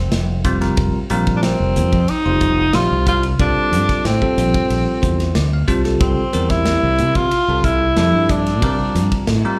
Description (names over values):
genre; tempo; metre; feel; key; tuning
electric jazz fusion; 92 BPM; 4/4; straight; unclear; A4 = 440 Hz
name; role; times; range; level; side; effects
clear tenor saxophone; melody; 0.0-9.3 s; C4 to F4; -21 LUFS; equal; slapback echo
fretless electric bass; bass; 0.0-9.5 s; F1 to C3; -21 LUFS; equal; none
modern studio drum kit; drums; 0.1-9.4 s; hi-hat, kick drum, ride cymbal, snare drum; -24 LUFS; equal; none
bell-like tine electric piano; accompaniment; 0.4-9.6 s; F3 to A5; -24 LUFS; equal; phaser, slapback echo
room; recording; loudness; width
light reverb, small room reverb; live gig heard through the venue's PA, club reverb; -17 LUFS; mono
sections
0.0-9.6 A section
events
tine electric piano fill 4.7-6.0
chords
0.0 Fsus4; 3.4 C13sus4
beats
0.12 | 0.78 1.43 2.09 2.74 | 3.40 4.05 4.71 5.36 | 6.01 6.67 7.32 7.97 | 8.63 9.28